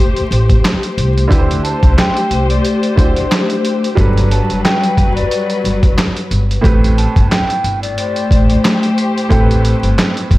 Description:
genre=hip hop, boom-bap hip-hop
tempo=90 BPM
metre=4/4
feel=swing 56% on 16ths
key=unclear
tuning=A4 = 439 Hz
part: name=rich studio string section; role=stabs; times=0.0-10.4 s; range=F#3 to C5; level=-18 LUFS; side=left 2 dB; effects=high-pass filter, low-pass filter, ping-pong delay
part: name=trip hop sampler-style drum kit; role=drums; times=0.2-10.4 s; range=handclaps, hi-hat, kick drum, snare drum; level=-14 LUFS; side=equal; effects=none
part: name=upright bass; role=bass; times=0.3-10.4 s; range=F#1 to D2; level=-15 LUFS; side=equal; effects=none
part: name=bright upright piano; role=accompaniment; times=1.3-10.4 s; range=A2 to C5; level=-21 LUFS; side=right 3 dB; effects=cassette tape, high-pass filter, low-pass filter
part: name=breathy mellow jazz flute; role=melody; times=1.6-8.6 s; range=D5 to A5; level=-20 LUFS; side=left 1 dB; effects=high-pass filter, low-pass filter, ping-pong delay
room=small room ambience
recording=vinyl crackle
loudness=-11 LUFS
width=side -18 dB against mid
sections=0.0-10.4 A section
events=break 0.0-1.3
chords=0.0 Am7; 1.3 D7sus4; 4.0 Gmaj7; 6.6 Am7

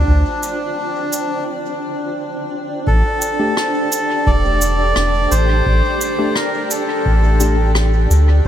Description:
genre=ambient dub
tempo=86 BPM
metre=4/4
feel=straight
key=unclear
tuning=A4 = 440 Hz
part: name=melodica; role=melody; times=0.0-8.5 s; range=D4 to D5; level=-20 LUFS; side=equal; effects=dub echo
part: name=granular cloud pad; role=sustained chords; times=0.0-8.5 s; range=D4 to G5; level=-22 LUFS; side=equal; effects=built-in reverb
part: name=soft dub sub bass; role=bass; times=0.0-8.5 s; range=E1 to D2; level=-14 LUFS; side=equal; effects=tube saturation
part: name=electronic kick drum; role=drums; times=0.1-8.5 s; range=none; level=-19 LUFS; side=equal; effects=none
part: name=cabasa and rim click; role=drums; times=0.4-8.2 s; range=none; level=-25 LUFS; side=equal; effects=dub echo
part: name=tine electric piano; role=stabs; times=3.4-7.5 s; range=A3 to G4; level=-26 LUFS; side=left 3 dB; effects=overdrive, fast stereo tremolo, dub echo
room=light reverb, small room ambience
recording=none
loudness=-14 LUFS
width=side -10 dB against mid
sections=0.0-2.9 A section; 2.9-8.5 B section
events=break 1.5-2.9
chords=0.0 Dm11; 2.9 A7sus4

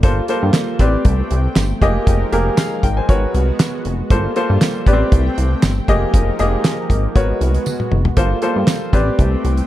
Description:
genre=early-eighties boogie funk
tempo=118 BPM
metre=4/4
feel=straight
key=unclear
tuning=A4 = 438 Hz
part: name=clear baby grand piano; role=accompaniment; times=0.0-9.7 s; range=Bb3 to Ab5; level=-20 LUFS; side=left 1 dB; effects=none
part: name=lush unison pad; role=sustained chords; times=0.0-9.7 s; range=F3 to G5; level=-25 LUFS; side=equal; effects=chorus
part: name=chorused synth bass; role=bass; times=0.0-9.6 s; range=F1 to G2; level=-17 LUFS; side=equal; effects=none
part: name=damped 70s drum kit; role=drums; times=0.0-9.7 s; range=handclaps, hi-hat, kick drum, snare drum, toms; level=-16 LUFS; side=equal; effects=none
part: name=tambourine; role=percussion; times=0.5-8.8 s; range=none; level=-34 LUFS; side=right 7 dB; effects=none
room=light reverb, small room reverb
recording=dark, warm production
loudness=-14 LUFS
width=side -14 dB against mid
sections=0.0-9.7 A section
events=drum fill 7.7-8.2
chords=0.0 Gm11; 0.8 Am11; 1.8 Fm11; 3.1 Abm11; 4.1 Gm11; 4.9 Am11; 5.9 Fm11; 7.2 Abm11; 8.2 Gm11; 8.9 Am11

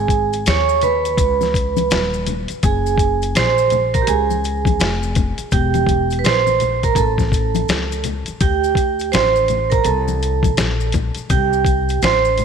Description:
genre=hip hop, jazz-hop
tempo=83 BPM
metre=4/4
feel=swing 62% on 16ths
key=unclear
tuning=A4 = 439 Hz
part: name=vibraphone with medium hard mallets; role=accompaniment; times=0.0-12.4 s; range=G4 to Db6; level=-18 LUFS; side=right 6 dB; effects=none
part: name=upright bass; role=bass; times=0.0-12.4 s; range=Eb1 to Eb2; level=-21 LUFS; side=left 2 dB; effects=none
part: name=dusty soul sampler-style drum kit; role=drums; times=0.1-12.4 s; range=hi-hat, kick drum, snare drum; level=-20 LUFS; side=left 2 dB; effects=none
part: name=maracas and congas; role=percussion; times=0.1-12.4 s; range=none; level=-27 LUFS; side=left 13 dB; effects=none
room=moderate echo chamber reverb, RT60 2.4 s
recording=1960s-style stereo with parts hard left and right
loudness=-15 LUFS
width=side -6 dB against mid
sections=0.0-12.4 A section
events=vibraphone solo 0.0-12.4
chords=0.0 Abm; 1.2 Dbsus2; 2.6 Gbadd9; 5.5 Edim; 7.0 A; 8.4 D5; 11.3 C5

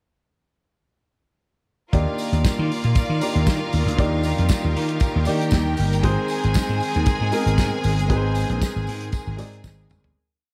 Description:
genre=disco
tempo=117 BPM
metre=4/4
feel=straight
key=Eb major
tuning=A4 = 439 Hz
part: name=clear studio string section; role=second line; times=1.9-10.1 s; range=F4 to Ab5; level=-32 LUFS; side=equal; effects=none
part: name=warm grand piano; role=accompaniment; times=1.9-10.2 s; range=Ab3 to D5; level=-30 LUFS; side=equal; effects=none
part: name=rich studio string section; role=sustained chords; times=1.9-10.1 s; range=Eb3 to D5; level=-33 LUFS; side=equal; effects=none
part: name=vintage slap bass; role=bass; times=1.9-10.1 s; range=G1 to Eb3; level=-24 LUFS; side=equal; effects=none
part: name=warm soul drum kit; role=drums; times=1.9-10.2 s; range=hi-hat, kick drum, snare drum, toms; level=-26 LUFS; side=equal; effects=none
part: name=tambourine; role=percussion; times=2.2-10.0 s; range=none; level=-42 LUFS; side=equal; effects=none
room=little or no reverb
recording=none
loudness=-21 LUFS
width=mono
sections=1.9-10.2 groove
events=fade-out 8.1-10.2; drum fill 9.6-10.2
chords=1.9 Ebmaj7; 6.0 Ab

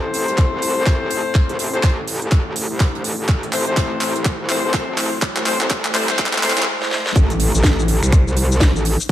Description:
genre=bass house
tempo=124 BPM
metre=4/4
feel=swing 60% on 16ths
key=A minor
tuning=A4 = 440 Hz
part: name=dark analog pad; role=sustained chords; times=0.0-9.1 s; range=A3 to C5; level=-32 LUFS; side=right 1 dB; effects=chorus, sidechain pumping
part: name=mellow horn section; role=stabs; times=0.0-6.7 s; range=A3 to C5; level=-24 LUFS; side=left 4 dB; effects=sidechain pumping, low-pass filter, dub echo
part: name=metallic wobble bass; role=bass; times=0.0-9.0 s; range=A1 to C2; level=-22 LUFS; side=equal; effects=distortion, chorus, sidechain pumping, high-pass filter
part: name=riser, noise sweep and impact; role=sound effects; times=1.6-9.1 s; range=none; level=-28 LUFS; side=right 1 dB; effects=none
part: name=compact cocktail drum kit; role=drums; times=0.1-9.0 s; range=hi-hat, snare drum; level=-32 LUFS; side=right 4 dB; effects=none
part: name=garage drum kit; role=drums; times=0.1-9.1 s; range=finger snaps, handclaps, hi-hat, shaker, snare drum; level=-22 LUFS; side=equal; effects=high-pass filter on hats, high-pass filter on snare, high-pass filter on perc, high-pass filter on room
part: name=electronic kick drum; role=drums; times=0.4-9.1 s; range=none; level=-17 LUFS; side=equal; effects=none
room=light reverb, small room ambience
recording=high-pass filter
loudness=-16 LUFS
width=side -12 dB against mid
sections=0.0-7.2 A section; 7.2-9.1 B section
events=build-up 0.0-7.2; drum fill 0.0-6.7, 6.8-7.2; filter sweep on horn section 0.0-7.2; filter sweep on analog synth pad 0.0-7.2; filter sweep 0.0-7.2; riser 1.6-7.2; noise sweep 5.2-7.2; break 6.7-7.2; drop 7.2-9.1; impact 7.2-9.1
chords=0.0 Am

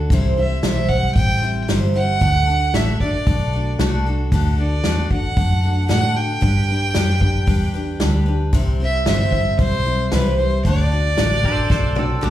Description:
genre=honky-tonk and classic country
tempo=114 BPM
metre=4/4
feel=straight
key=D mixolydian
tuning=A4 = 440 Hz
part: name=picked steel-string acoustic guitar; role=accompaniment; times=0.0-12.3 s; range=C3 to D5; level=-23 LUFS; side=left 2 dB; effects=plate reverb, slapback echo
part: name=vintage muted fingered electric bass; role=bass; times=0.0-12.3 s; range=G1 to A2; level=-19 LUFS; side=equal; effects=none
part: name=natural country drum kit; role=drums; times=0.1-12.3 s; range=hi-hat, kick drum, snare drum, toms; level=-21 LUFS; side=equal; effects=none
part: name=clear fiddle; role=melody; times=0.4-12.3 s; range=B4 to G5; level=-23 LUFS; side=right 2 dB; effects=slapback echo, plate reverb
part: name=twangy electric guitar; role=second line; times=11.4-12.3 s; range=C4 to C5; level=-25 LUFS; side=right 2 dB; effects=plate reverb, slapback echo, tape echo
room=light reverb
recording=live gig heard through the venue's PA, club reverb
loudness=-16 LUFS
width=side -12 dB against mid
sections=0.0-12.3 A section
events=drum fill 11.7-12.3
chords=0.1 C; 2.2 D; 6.4 G; 8.5 C; 10.6 D

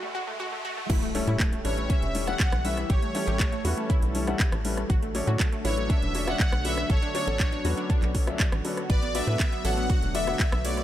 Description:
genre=progressive house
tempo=120 BPM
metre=4/4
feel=straight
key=A mixolydian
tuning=A4 = 441 Hz
part: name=wide unison pluck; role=arpeggios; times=0.0-10.8 s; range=A3 to B4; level=-35 LUFS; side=right 1 dB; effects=sidechain pumping, tape echo
part: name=riser and impact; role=sound effects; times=0.0-2.9 s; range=none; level=-37 LUFS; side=left 1 dB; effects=none
part: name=lush unison pad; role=sustained chords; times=0.9-10.8 s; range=D3 to C#5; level=-36 LUFS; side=equal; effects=chorus, sidechain pumping
part: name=tight sequencer bass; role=bass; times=0.9-10.8 s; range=E1 to A2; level=-29 LUFS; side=equal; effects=sidechain pumping
part: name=electronic kick drum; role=drums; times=0.9-10.5 s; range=none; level=-25 LUFS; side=equal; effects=none
part: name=house drum kit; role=drums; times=0.9-10.8 s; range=crash cymbal, handclaps, hi-hat, ride cymbal, rim click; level=-33 LUFS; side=right 1 dB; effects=none
part: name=warm grand piano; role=stabs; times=1.1-10.8 s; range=F#3 to F#5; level=-33 LUFS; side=left 4 dB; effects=sidechain pumping, tape echo
part: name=soft supersaw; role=melody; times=1.6-10.8 s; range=C#5 to F#5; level=-33 LUFS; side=equal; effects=phaser, tape echo
part: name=glassy wavetable pluck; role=second line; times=1.6-10.8 s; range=C#5 to F#5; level=-40 LUFS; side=equal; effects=none
room=digital ambience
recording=high-pass filter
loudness=-23 LUFS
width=side -12 dB against mid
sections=0.9-10.8 A section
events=break 0.0-0.9; riser 0.0-0.9; drop 0.9-10.8; impact 0.9-2.9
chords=0.0 D/A (rootless); 0.9 A7; 4.9 Dmaj7

